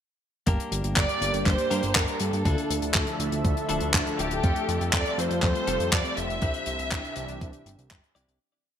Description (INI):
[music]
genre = italo disco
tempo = 121 BPM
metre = 4/4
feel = straight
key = unclear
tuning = A4 = 438 Hz
[part]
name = lush unison pad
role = sustained chords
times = 0.5-8.4 s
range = E3 to E5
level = -32 LUFS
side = equal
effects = chorus
[part]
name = direct-recorded clean electric guitar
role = stabs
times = 0.5-8.4 s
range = G2 to D5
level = -36 LUFS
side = left 4 dB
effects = lush chorus
[part]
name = fat analog bass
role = bass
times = 0.5-8.4 s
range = D1 to G2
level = -30 LUFS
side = equal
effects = tube saturation
[part]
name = damped 70s drum kit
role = drums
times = 0.5-8.4 s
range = handclaps, hi-hat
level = -28 LUFS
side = left 1 dB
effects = studio reverb, gated reverb
[part]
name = electronic kick drum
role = drums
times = 0.5-8.0 s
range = none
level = -26 LUFS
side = equal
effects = studio reverb
[part]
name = warm studio violin section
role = melody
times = 1.0-7.9 s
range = G4 to E5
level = -30 LUFS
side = right 1 dB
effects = digital delay
[sound]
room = moderate plate reverb, RT60 1.7 s, small room ambience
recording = bright 1980s-style digital production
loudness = -23 LUFS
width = side -9 dB against mid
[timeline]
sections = 0.5-8.4 verse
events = fade-out 5.8-8.4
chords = 0.5 Gm; 2.5 Dmadd9; 4.4 Fadd9; 6.4 Cadd9